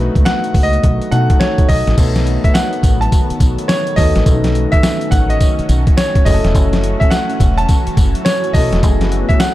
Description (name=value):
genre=R&B, new jack swing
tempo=105 BPM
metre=4/4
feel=swing 63% on 16ths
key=unclear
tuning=A4 = 439 Hz
part: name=dark baby grand piano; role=accompaniment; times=0.0-9.5 s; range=D#3 to B4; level=-21 LUFS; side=left 2 dB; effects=none
part: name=lush unison pad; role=sustained chords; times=0.0-9.5 s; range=D#3 to F#4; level=-24 LUFS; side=right 1 dB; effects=chorus, phaser
part: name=deep dub fingered electric bass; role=bass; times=0.0-9.2 s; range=E1 to B2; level=-15 LUFS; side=equal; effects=none
part: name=boom bap sampler-style drum kit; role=drums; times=0.2-9.5 s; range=crash cymbal, hi-hat, kick drum, snare drum, tambourine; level=-14 LUFS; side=equal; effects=none
part: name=bright concert grand piano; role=melody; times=0.3-9.5 s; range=C#5 to A5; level=-19 LUFS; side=right 1 dB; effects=digital delay
room=digital ambience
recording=dark, warm production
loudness=-11 LUFS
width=side -15 dB against mid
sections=0.0-2.0 A section; 2.0-9.5 B section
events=none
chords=0.0 B7; 6.3 F#m7